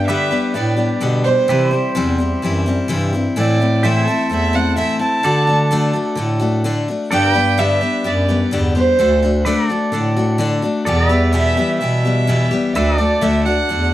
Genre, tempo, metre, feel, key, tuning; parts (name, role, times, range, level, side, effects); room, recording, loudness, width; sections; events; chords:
honky-tonk and classic country; 128 BPM; 4/4; straight; G major; A4 = 440 Hz
dark fiddle; second line; 0.0-13.9 s; C5 to A5; -19 LUFS; right 3 dB
picked steel-string acoustic guitar; accompaniment; 0.0-13.9 s; E2 to G4; -19 LUFS; left 3 dB
mellow bass clarinet; bass; 0.0-13.9 s; D2 to D3; -18 LUFS; right 1 dB
pedal steel guitar; sustained chords; 0.1-13.9 s; G4 to E5; -24 LUFS; right 1 dB
light reverb; dry, close 1970s-style studio recording; -14 LUFS; side -14 dB against mid
0.0-13.9 A section
fiddle solo 0.0-13.9
0.0 G; 1.5 C; 3.4 Am; 5.2 D; 7.1 G; 9.0 D; 10.9 Em; 12.7 D